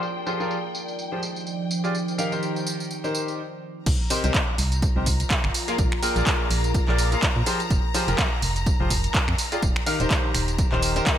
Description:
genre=piano house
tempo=125 BPM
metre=4/4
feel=swing 57% on 16ths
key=Eb major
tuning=A4 = 440 Hz
part: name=clear studio string section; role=sustained chords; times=0.0-11.2 s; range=G5 to Bb5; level=-35 LUFS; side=left 4 dB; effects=sidechain pumping
part: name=punchy analog drum machine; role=drums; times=0.0-11.2 s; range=crash cymbal, finger snaps, handclaps, hi-hat, tambourine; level=-27 LUFS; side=right 1 dB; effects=none
part: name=deep dark ambient pad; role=texture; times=0.0-11.2 s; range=F3 to Bb5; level=-33 LUFS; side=right 1 dB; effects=chorus, built-in reverb, sidechain pumping
part: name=clear concert grand piano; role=riff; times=0.3-11.2 s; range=C3 to G5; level=-27 LUFS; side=left 1 dB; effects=lush chorus, sidechain pumping, ping-pong delay
part: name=organ-like FM bass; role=bass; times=3.9-11.0 s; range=Eb1 to Bb2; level=-25 LUFS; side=equal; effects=sidechain pumping
part: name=electronic kick drum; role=drums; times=3.9-11.2 s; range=none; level=-24 LUFS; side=equal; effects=none
room=moderate lush hall reverb, RT60 1.6 s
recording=bright 1980s-style digital production, low-pass filter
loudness=-21 LUFS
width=side -10 dB against mid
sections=0.0-3.9 A section; 3.9-11.2 B section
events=stop 3.4-3.9; drop 3.9-11.2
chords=0.0 Fmadd9; 1.9 Eb6; 3.9 Cm7; 5.5 Bb7; 7.5 Fmadd9; 9.6 Eb6

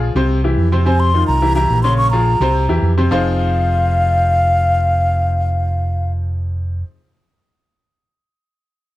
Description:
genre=latin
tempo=213 BPM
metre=4/4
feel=straight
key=F minor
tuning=A4 = 440 Hz
part: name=bright upright piano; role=accompaniment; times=0.0-6.8 s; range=C3 to Db5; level=-20 LUFS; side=left 2 dB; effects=none
part: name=fingered electric bass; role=bass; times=0.0-6.8 s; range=F1 to F2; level=-16 LUFS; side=equal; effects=none
part: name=baroque flute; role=melody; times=0.9-6.1 s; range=F5 to Db6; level=-17 LUFS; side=left 1 dB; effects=none
room=light reverb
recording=dark, warm production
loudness=-13 LUFS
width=side -16 dB against mid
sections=0.9-3.1 A section; 3.1-5.4 B section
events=none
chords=0.3 C; 0.9 F5; 1.4 C7; 2.0 Bbm7; 2.5 C7; 3.1 Fm7

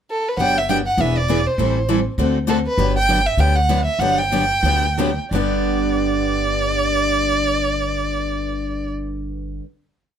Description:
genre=acoustic string swing (jazz manouche)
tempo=170-201 BPM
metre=4/4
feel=swing 57% on 8ths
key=G major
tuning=A4 = 440 Hz
part: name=warm violin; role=melody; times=0.1-8.9 s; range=A4 to G5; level=-20 LUFS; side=right 2 dB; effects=none
part: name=picked steel-string acoustic guitar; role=accompaniment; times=0.4-9.7 s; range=G2 to A4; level=-24 LUFS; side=left 8 dB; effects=none
part: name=picked steel-string acoustic guitar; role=accompaniment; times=0.4-9.6 s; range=G2 to B4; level=-25 LUFS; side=right 7 dB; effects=none
part: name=upright bass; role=bass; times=0.4-9.6 s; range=E1 to D2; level=-23 LUFS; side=equal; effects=none
room=light reverb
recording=none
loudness=-17 LUFS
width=side -8 dB against mid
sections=0.0-0.4 pickup bar; 0.4-5.3 A section; 5.3-8.1 final chord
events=slowing down 2.8-5.3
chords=0.4 Gmaj7; 1.0 E7; 1.6 Am7; 2.2 D7; 2.8 Gmaj7; 5.3 G

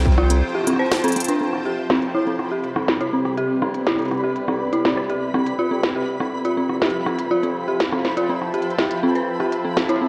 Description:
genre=IDM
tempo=122 BPM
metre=4/4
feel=straight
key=C major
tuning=A4 = 440 Hz
part: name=granular cloud pad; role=sustained chords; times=0.0-10.1 s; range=C4 to A5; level=-28 LUFS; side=equal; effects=built-in reverb, vintage 12-bit sampler grit, shimmer reverb
part: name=flickering grainy texture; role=texture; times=0.9-10.1 s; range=C4 to B5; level=-35 LUFS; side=equal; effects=built-in reverb, shimmer reverb
part: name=dark detuned synth bell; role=arpeggios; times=0.2-10.1 s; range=C4 to C5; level=-24 LUFS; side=equal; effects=chorus, low-pass filter, delay, shimmer reverb
part: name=industrial drum kit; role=drums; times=0.2-10.0 s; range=hi-hat, rim click, snare drum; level=-26 LUFS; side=equal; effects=low-pass filter on snare, low-pass filter on hats, low-pass filter on room, delay
room=moderate plate reverb, RT60 2.3 s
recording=none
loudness=-21 LUFS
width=mono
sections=0.0-1.4 A section; 1.4-10.1 B section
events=filter sweep on ambient pad 1.4-10.1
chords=0.0 Fmaj9; 1.4 Cmaj9; 5.3 Fmaj9; 9.3 Cmaj7

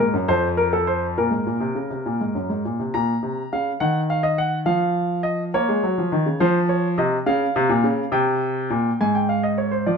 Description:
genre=classical, baroque-style two-part invention for grand piano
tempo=69 BPM (dotted quarters)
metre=6/8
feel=straight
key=Bb minor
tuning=A4 = 440 Hz
part: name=warm grand piano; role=solo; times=0.0-10.0 s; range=F2 to Bb5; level=-19 LUFS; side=equal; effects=none
room=moderate stone room reverb, RT60 1.2 s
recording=minimal, uncompressed stereo recording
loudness=-19 LUFS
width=side -5 dB against mid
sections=0.0-2.9 A section; 2.9-9.9 B section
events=none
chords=0.3 F; 1.2 N.C.; 2.9 Bbm; 3.8 Ebm; 4.7 Ebsus2/F; 5.5 Bbm; 6.4 F5; 7.3 Bbm; 8.1 C5; 9.0 Fm/Ab

